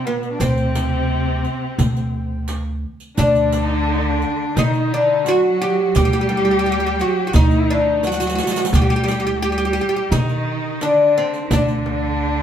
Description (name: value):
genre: Turkish makam ensemble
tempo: 86 BPM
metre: 4/4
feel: straight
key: D makam hicaz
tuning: A4 = 440 Hz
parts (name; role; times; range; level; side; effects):
- oud; melody; 0.0-12.4 s; B3-40c to G4; -19 LUFS; equal; none
- rich kamancheh; second line; 0.0-12.4 s; B3-37c to G4; -25 LUFS; left 2 dB; none
- rich studio cello section; second line; 0.0-12.4 s; B2-40c to A3; -25 LUFS; equal; none
- upright bass; bass; 0.0-12.4 s; D2 to D3; -21 LUFS; equal; none
- darbuka; percussion; 0.1-12.0 s; none; -24 LUFS; equal; none
- riq; percussion; 0.2-11.8 s; none; -29 LUFS; right 3 dB; none
- frame drum; percussion; 0.4-12.0 s; none; -26 LUFS; left 1 dB; none
room: moderate studio reverb, RT60 0.8 s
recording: band playing live in one room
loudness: -16 LUFS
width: side -9 dB against mid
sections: 0.0-12.4 A section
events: drum fill 8.0-8.7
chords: none